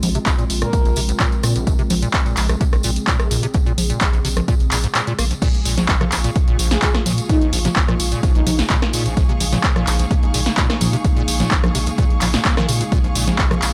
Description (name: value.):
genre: acid house.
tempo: 128 BPM.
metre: 4/4.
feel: straight.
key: Bb minor.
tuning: A4 = 440 Hz.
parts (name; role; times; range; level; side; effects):
warbly tape-like pad; sustained chords; 0.0-13.7 s; Db3 to Ab4; -31 LUFS; equal; chorus, built-in reverb, sidechain pumping.
acid bass, square; riff; 0.0-13.5 s; Bb1 to Bb3; -27 LUFS; equal; analog chorus, sidechain pumping.
saturated sub bass; bass; 0.0-13.7 s; Bb1 to Bb2; -24 LUFS; equal; sidechain pumping.
punchy analog drum machine; drums; 0.0-13.7 s; congas, crash cymbal, handclaps, hi-hat, rim click, snare drum; -23 LUFS; equal; none.
tambourine; percussion; 0.0-13.7 s; none; -33 LUFS; equal; none.
electronic kick drum; drums; 0.3-13.5 s; none; -21 LUFS; equal; none.
breathy flute-like synth lead; melody; 0.6-1.0, 6.7-8.5 s; Eb4 to Bb4; -28 LUFS; equal; subtle chorus, tape echo.
rich studio string section; texture; 5.4-13.7 s; Ab4 to Db6; -33 LUFS; equal; sidechain pumping.
room: little or no reverb.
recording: dry, gritty hardware recording.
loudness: -18 LUFS.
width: mono.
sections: 0.0-5.4 A section; 5.4-13.7 B section.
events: filter sweep on acid bass 0.0-5.4; kick drops out 5.0-5.4; drop 5.4-13.7.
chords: 0.0 Bbm7.